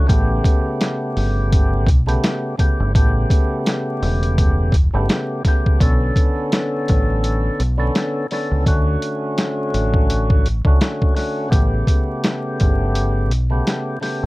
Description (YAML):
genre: hip hop, boom-bap hip-hop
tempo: 84 BPM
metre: 4/4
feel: swing 57% on 16ths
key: unclear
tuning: A4 = 440 Hz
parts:
  - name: percussive tonewheel organ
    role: accompaniment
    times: 0.0-14.3 s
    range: C#3 to A4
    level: -22 LUFS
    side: equal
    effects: slow rotary speaker, cassette tape, high-pass filter, low-pass filter
  - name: deep dub fingered electric bass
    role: bass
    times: 0.1-14.3 s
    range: E1 to D2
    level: -19 LUFS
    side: equal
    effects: transformer saturation
  - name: boom bap sampler-style drum kit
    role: drums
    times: 0.1-14.2 s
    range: hi-hat, kick drum, snare drum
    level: -16 LUFS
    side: equal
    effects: none
room: little or no reverb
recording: worn, warbling old tape, cassette tape, vinyl crackle, warbly pitch drift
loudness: -16 LUFS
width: side -20 dB against mid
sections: 0.0-5.8 A section; 5.8-14.3 B section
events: none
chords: 0.1 A9; 5.8 Bm9; 8.7 Dmaj7; 11.5 A9